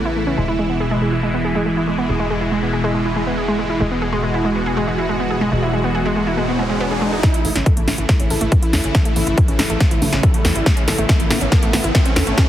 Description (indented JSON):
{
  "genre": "uplifting trance",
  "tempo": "140 BPM",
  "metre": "4/4",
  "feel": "straight",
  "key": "A major",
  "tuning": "A4 = 440 Hz",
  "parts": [
    { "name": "supersaw pad", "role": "sustained chords", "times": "0.0-12.5 s", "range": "B2 to F#4", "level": "-22 LUFS", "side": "equal", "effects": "phaser, sidechain pumping" },
    { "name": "tight sequencer bass", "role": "bass", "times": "0.0-12.3 s", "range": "E1 to E2", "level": "-25 LUFS", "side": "equal", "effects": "sidechain pumping" },
    { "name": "wide unison pluck", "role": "arpeggios", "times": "0.1-12.4 s", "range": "G#3 to A4", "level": "-22 LUFS", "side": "right 1 dB", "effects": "sidechain pumping, digital delay" },
    { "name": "riser", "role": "sound effects", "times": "5.0-12.5 s", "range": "none", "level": "-27 LUFS", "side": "right 1 dB", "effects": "none" },
    { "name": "big-room dance drum kit", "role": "drums", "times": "7.2-12.5 s", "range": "congas, hi-hat, snare drum", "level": "-21 LUFS", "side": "equal", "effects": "none" },
    { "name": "electronic kick drum", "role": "drums", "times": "7.2-12.5 s", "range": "none", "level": "-15 LUFS", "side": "equal", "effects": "overdrive" }
  ],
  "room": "light reverb",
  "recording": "heavily compressed radio sound",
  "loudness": "-15 LUFS",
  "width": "side -12 dB against mid",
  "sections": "0.0-7.2 A section; 7.2-12.5 B section",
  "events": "filter sweep on synth pluck 0.0-7.2, 7.2-12.5; riser 5.0-7.2, 7.2-12.5; build-up 7.2-12.5; drum fill 7.2-12.5",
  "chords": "0.4 E; 7.2 A"
}